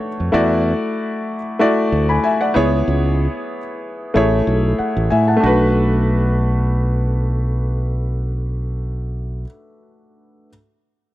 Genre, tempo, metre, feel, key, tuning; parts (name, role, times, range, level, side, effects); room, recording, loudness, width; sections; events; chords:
lush 1970s-style soul; 94 BPM; 4/4; swing 54% on 16ths; B dorian; A4 = 440 Hz
clear concert grand piano; accompaniment; 0.0-10.5 s; A3 to B5; -18 LUFS; left 1 dB
fingered electric bass; bass; 0.2-9.4 s; A1 to A2; -18 LUFS; equal
light reverb; -16 LUFS; side -15 dB against mid
0.0-5.4 A section; 5.4-8.0 B section
0.3 E9sus4; 2.6 C#m7; 4.2 Amaj7; 5.4 Bm7